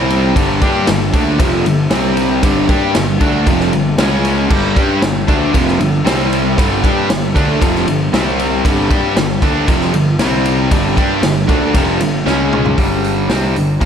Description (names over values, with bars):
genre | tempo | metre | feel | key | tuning
classic rock | 116 BPM | 4/4 | straight | G minor | A4 = 440 Hz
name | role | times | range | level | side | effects
string machine, cellos | sustained chords | 0.0-12.8 s | G3 to C#5 | -26 LUFS | equal | none
cranked stack guitar | riff | 0.0-13.9 s | F2 to G4 | -16 LUFS | equal | overdrive, slapback echo
crunchy overdriven guitar | riff | 0.0-12.8 s | F2 to G4 | -19 LUFS | left 1 dB | spring reverb, slapback echo
fuzz picked electric bass | bass | 0.0-13.9 s | F1 to G2 | -20 LUFS | equal | overdrive
vintage drum kit | drums | 0.1-13.9 s | crash cymbal, hi-hat, kick drum, ride cymbal, snare drum, toms | -17 LUFS | equal | none
room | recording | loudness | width
moderate concert hall reverb, RT60 2.0 s | big arena sound | -12 LUFS | side -8 dB against mid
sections
0.0-12.8 A section; 12.8-13.9 B section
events
drum fill 12.3-12.8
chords
0.4 Gm; 1.9 C5; 2.4 Gm; 4.0 C#5; 4.5 Gm; 6.1 C5; 6.6 Gm; 8.1 C5; 8.6 Gm; 10.2 C5; 10.7 Gm; 12.3 C#5; 12.8 G5